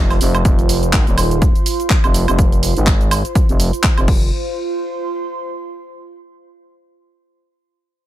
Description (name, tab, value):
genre	bass house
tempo	124 BPM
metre	4/4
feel	swing 57% on 16ths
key	F minor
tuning	A4 = 439 Hz
part	growling FM bass	bass	0.0-4.3 s	Eb1 to Ab1	-17 LUFS	equal	overdrive, sidechain pumping
part	downlifter	sound effects	0.0-0.5 s	none	barely audible	none	none
part	warbly tape-like pad	texture	0.0-6.2 s	F4 to C6	-24 LUFS	right 3 dB	chorus, built-in reverb, sidechain pumping
part	house drum kit	drums	0.1-4.2 s	crash cymbal, handclaps, hi-hat, shaker, woodblock	-21 LUFS	right 2 dB	none
part	electronic kick drum	drums	0.5-4.2 s	none	-15 LUFS	equal	overdrive
room	little or no reverb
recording	none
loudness	-13 LUFS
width	side -14 dB against mid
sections	0.0-4.3 A section; 4.3-6.3 B section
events	filter sweep on FM bass 0.0-4.3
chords	0.0 F5